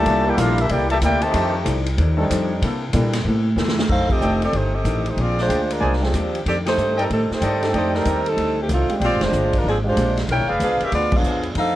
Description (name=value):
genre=jazz, big band swing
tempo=188 BPM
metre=4/4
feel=swing 64% on 8ths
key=unclear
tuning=A4 = 445 Hz
part: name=mellow trumpet section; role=melody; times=0.0-1.5 s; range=D4 to A5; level=-20 LUFS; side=left 1 dB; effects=none
part: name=bright trombone section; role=second line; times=0.0-1.5 s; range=Bb2 to G4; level=-25 LUFS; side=left 1 dB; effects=none
part: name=warm grand piano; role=accompaniment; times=0.0-11.5 s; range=G3 to Db5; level=-26 LUFS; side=right 1 dB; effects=none
part: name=clear trombone section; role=sustained chords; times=0.0-3.1 s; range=Eb3 to A4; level=-29 LUFS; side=equal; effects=none
part: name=upright bass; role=bass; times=0.0-11.8 s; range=F1 to C3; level=-22 LUFS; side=equal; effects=none
part: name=archtop guitar, miked and amplified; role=accompaniment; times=0.1-11.8 s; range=F2 to D5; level=-29 LUFS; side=left 4 dB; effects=none
part: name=swinging big-band drum kit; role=drums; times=0.1-11.6 s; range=crash cymbal, hi-hat, kick drum, ride cymbal, snare drum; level=-26 LUFS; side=equal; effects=none
part: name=clear saxophone section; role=melody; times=3.9-11.8 s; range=Eb3 to G5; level=-21 LUFS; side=right 1 dB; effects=none
part: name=warm trumpet section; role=stabs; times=4.2-10.9 s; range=Ab4 to Ab5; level=-25 LUFS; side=equal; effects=none
room=light reverb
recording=worn, warbling old tape, cassette tape, warbly pitch drift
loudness=-17 LUFS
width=side -14 dB against mid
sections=0.0-3.9 A section; 3.9-11.8 B section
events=drum fill 3.6-3.9; band accent 4.0, 6.6, 9.2, 11.1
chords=0.1 C13; 1.3 F13; 2.6 C13; 3.9 F13; 5.2 Bb13; 6.4 F13; 9.0 Bb13; 10.3 Bdim7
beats=| 0.06 0.38 0.70 1.02 | 1.34 1.66 1.98 2.29 | 2.61 2.93 3.25 3.57 | 3.89 4.21 4.53 4.85 | 5.17 5.49 5.81 6.13 | 6.45 6.76 7.08 7.40 | 7.72 8.04 8.36 8.68 | 9.00 9.32 9.64 9.96 | 10.28 10.60 10.91 11.23 | 11.55